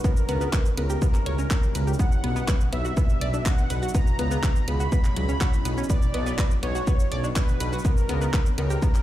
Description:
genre	melodic techno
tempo	123 BPM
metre	4/4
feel	straight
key	unclear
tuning	A4 = 440 Hz
part	wide unison lead	melody	0.0-9.0 s	A#4 to B5	-32 LUFS	equal	wide subtle chorus, sidechain pumping, tape echo
part	deep dark ambient pad	sustained chords	0.0-9.0 s	G3 to D5	-35 LUFS	left 1 dB	chorus, built-in reverb, sidechain pumping
part	analog pluck	arpeggios	0.0-8.9 s	F#3 to D6	-33 LUFS	left 1 dB	chorus, sidechain pumping, digital delay
part	bowed-like drone	drone	0.2-9.0 s	B2	-37 LUFS	right 1 dB	none
part	electronic kick drum	drums	0.0-8.9 s	none	-22 LUFS	equal	overdrive
part	house drum kit	drums	0.0-9.0 s	handclaps, hi-hat, shaker	-34 LUFS	right 1 dB	none
part	dark detuned saw bass	bass	0.3-8.8 s	B1 to C#2	-26 LUFS	equal	sidechain pumping
room	digital ambience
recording	played on a big sound system in a bare room, large studio reverb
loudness	-21 LUFS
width	side -14 dB against mid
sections	0.0-9.0 A section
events	none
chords	0.0 C#dim; 2.0 Bm; 3.9 C#m; 5.9 Bm; 7.8 C#dim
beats	| 0.04 0.53 1.02 1.51 | 2.00 2.48 2.97 3.46 | 3.95 4.43 4.92 5.41 | 5.90 6.38 6.87 7.36 | 7.85 8.34 8.82

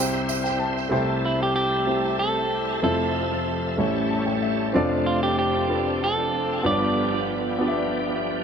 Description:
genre	slow gospel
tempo	63 BPM (dotted quarters)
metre	6/8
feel	straight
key	C major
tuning	A4 = 440 Hz
part	warm grand piano	accompaniment	0.0-8.4 s	F1 to A5	-24 LUFS	equal	dub echo
part	bright tonewheel organ	sustained chords	0.0-8.4 s	F3 to E5	-30 LUFS	right 2 dB	slow rotary speaker, overdrive, chorus vibrato
part	tambourine	percussion	0.3-0.6 s	none	-31 LUFS	right 8 dB	dub echo
part	dark studio string section	sustained chords	0.9-8.4 s	F2 to E5	-33 LUFS	left 3 dB	none
part	clean electric guitar	melody	1.3-8.2 s	E4 to D5	-26 LUFS	right 2 dB	dub echo
room	light reverb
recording	echo-heavy mix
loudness	-21 LUFS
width	side -7 dB against mid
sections	0.9-8.4 A section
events	grand piano fill 0.0-0.9, 3.8-4.7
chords	0.0 C; 2.8 Fmaj7; 3.8 A7; 4.7 Dm7/F; 6.6 G7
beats	| 0.92 1.87 | 2.83 3.78 | 4.73 5.69 | 6.64 7.60

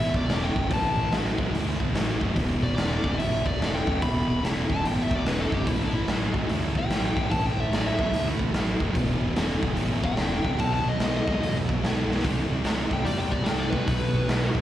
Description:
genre	blues rock power trio and southern rock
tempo	146 BPM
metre	4/4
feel	swing 64% on 8ths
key	E minor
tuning	A4 = 439 Hz
part	dark smooth lead guitar	melody	0.0-14.5 s	D4 to B5	-30 LUFS	left 2 dB	overdrive, slapback echo, digital delay
part	thick fuzz guitar	riff	0.0-14.6 s	E2 to A3	-28 LUFS	equal	distortion
part	fuzz fingered electric bass	bass	0.0-14.6 s	E1 to E2	-30 LUFS	equal	overdrive
part	raw garage drum kit	drums	0.1-14.6 s	hi-hat, kick drum, snare drum	-26 LUFS	equal	none
room	light reverb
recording	live gig heard through the venue's PA, recital hall reverb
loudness	-23 LUFS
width	side -12 dB against mid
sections	0.0-14.6 A section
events	drum fill 12.0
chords	0.0 Em7; 0.7 A5; 2.4 E7(no3); 5.7 A5; 9.0 Em; 10.6 B; 12.2 C; 13.9 B5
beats	0.29 | 0.71 1.12 1.53 1.95 | 2.36 2.78 3.19 3.60 | 4.02 4.43 4.84 5.25 | 5.66 6.08 6.49 6.90 | 7.31 7.72 8.13 8.54 | 8.95 9.36 9.78 10.19 | 10.60 11.01 11.42 11.83 | 12.24 12.65 13.06 13.47 | 13.88 14.30

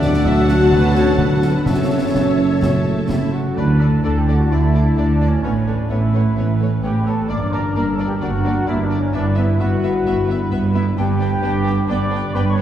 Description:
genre	cinematic, heroic adventure film score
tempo	129 BPM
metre	4/4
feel	straight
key	D major from 3.6 s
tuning	A4 = 440 Hz
part	warm symphonic violin section	melody	0.0-12.6 s	A4 to G5	-33 LUFS	left 5 dB	none
part	clear symphonic violin section	second line	0.0-12.6 s	B3 to A5	-31 LUFS	left 2 dB	none
part	concert flute	second line	0.0-12.6 s	A4 to D6	-32 LUFS	equal	none
part	dark clarinet	second line	0.0-12.6 s	C#4 to A4	-30 LUFS	left 1 dB	none
part	mellow cor anglais	second line	0.0-12.6 s	Bb4 to A5	-32 LUFS	right 1 dB	none
part	warm symphonic viola section	accompaniment	0.0-12.6 s	E3 to F#4	-26 LUFS	left 1 dB	none
part	mellow French horn section	sustained chords	0.0-12.6 s	A3 to D5	-26 LUFS	left 1 dB	none
part	concert harp	arpeggios	0.0-12.6 s	F#2 to D6	-26 LUFS	left 3 dB	none
part	dark trumpet section	stabs	0.0-12.6 s	C#4 to F#5	-28 LUFS	right 1 dB	none
part	mellow tuba	bass	0.0-3.3 s	F#1 to D2	-22 LUFS	right 1 dB	none
part	rich symphonic cello section	bass	0.0-12.6 s	D2 to D3	-21 LUFS	right 2 dB	none
part	rich symphonic double bass section	bass	0.0-12.6 s	F#1 to D2	-21 LUFS	right 2 dB	none
part	concert snare drum and concert bass drum	drums	0.0-3.3 s	none	-23 LUFS	equal	none
room	wet scoring stage reverb, RT60 2.0 s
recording	heard from further back in the room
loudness	-15 LUFS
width	side -10 dB against mid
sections	0.0-3.6 A section; 3.6-12.6 B section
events	none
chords	0.0 D; 1.7 F#m7; 3.6 Dsus2; 5.4 Aadd9; 7.3 Gm; 9.1 Emadd9/G; 11.0 G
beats	0.25 0.71 1.18 | 1.66 2.15 2.62 3.10 | 3.57 4.04 4.51 4.98 | 5.44 5.91 6.37 6.84 | 7.30 7.77 8.23 8.69 | 9.15 9.60 10.06 10.52 | 10.98 11.44 11.89 12.35

